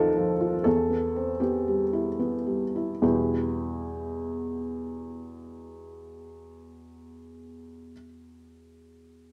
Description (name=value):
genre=neoclassical minimalist piano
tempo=70-91 BPM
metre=3/4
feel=rubato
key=E minor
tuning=A4 = 440 Hz
part: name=felt-muted upright piano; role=solo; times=0.0-9.3 s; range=D#2 to A#4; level=-28 LUFS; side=equal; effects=slapback echo
room=light reverb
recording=none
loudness=-27 LUFS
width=mono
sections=0.0-3.0 A section; 3.0-8.1 B section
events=slowing down 0.0-3.0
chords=0.0 D#sus2; 0.7 Em